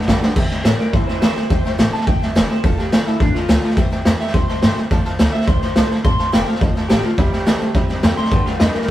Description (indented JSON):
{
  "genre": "rockabilly",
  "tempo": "211 BPM",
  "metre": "4/4",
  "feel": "straight",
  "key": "C major",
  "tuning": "A4 = 440 Hz",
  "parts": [
    { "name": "bright upright piano", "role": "accompaniment", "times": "0.0-8.8 s", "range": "B4 to A5", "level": "-32 LUFS", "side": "left 2 dB", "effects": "none" },
    { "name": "picked steel-string acoustic guitar", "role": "accompaniment", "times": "0.0-8.9 s", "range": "C3 to C5", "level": "-30 LUFS", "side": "left 2 dB", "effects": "none" },
    { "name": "twangy electric guitar", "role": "riff", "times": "0.0-0.3, 7.2-8.9 s", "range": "G2 to A3", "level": "-28 LUFS", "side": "right 2 dB", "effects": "none" },
    { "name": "raw garage drum kit", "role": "drums", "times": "0.0-8.9 s", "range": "crash cymbal, hi-hat, kick drum, snare drum", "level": "-16 LUFS", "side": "equal", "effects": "none" },
    { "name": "upright bass", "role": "bass", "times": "0.1-8.9 s", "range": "E1 to C3", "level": "-23 LUFS", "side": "left 1 dB", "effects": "none" },
    { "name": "electric guitar through a small old amp", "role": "melody", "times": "0.6-8.9 s", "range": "D4 to C6", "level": "-24 LUFS", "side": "equal", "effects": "none" }
  ],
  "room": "light reverb",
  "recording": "band playing live in one room",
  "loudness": "-14 LUFS",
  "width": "side -13 dB against mid",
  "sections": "0.4-8.9 A section",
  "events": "upright piano fill 0.0-0.4; drum fill 0.2; clean electric guitar solo 0.4-8.9",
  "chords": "0.4 C; 2.6 F; 3.8 C; 4.9 F; 7.2 C; 8.3 G"
}